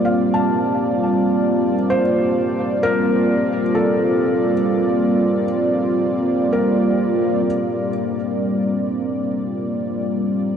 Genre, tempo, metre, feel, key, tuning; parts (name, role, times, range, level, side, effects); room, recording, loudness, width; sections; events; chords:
ambient; 65 BPM; 4/4; straight; A4 = 440 Hz
warm analog pad; sustained chords; 0.0-10.6 s; G3 to D5; -17 LUFS; equal; chorus
felt-muted upright piano; arpeggios; 0.0-7.9 s; A4 to A5; -24 LUFS; left 2 dB; tape echo
wet huge ambient reverb, RT60 8.3 s; dark, warm production; -17 LUFS; side -8 dB against mid
0.0-7.5 A section; 7.5-10.6 B section
0.0 Gm9; 7.5 Gm7